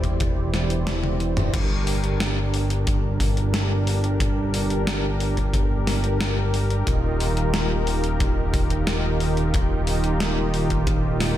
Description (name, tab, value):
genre	synthwave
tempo	90 BPM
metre	4/4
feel	straight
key	G minor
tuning	A4 = 439 Hz
part	brassy analog pad	sustained chords	0.0-11.4 s	Eb3 to D5	-26 LUFS	right 1 dB	chorus, sidechain pumping
part	fat analog bass	bass	0.0-11.4 s	Eb1 to G1	-24 LUFS	equal	tube saturation
part	gated 80s digital drum machine	drums	0.0-11.3 s	crash cymbal, hi-hat, snare drum, toms	-28 LUFS	left 1 dB	gated reverb, gated reverb snare
part	kick drum	drums	0.0-11.0 s	none	-27 LUFS	equal	none
room	little or no reverb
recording	none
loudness	-20 LUFS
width	side -12 dB against mid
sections	0.0-1.5 A section; 1.5-11.4 B section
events	drum fill 0.9-1.5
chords	0.0 Cadd9/E; 1.5 Gm; 6.9 Ebadd9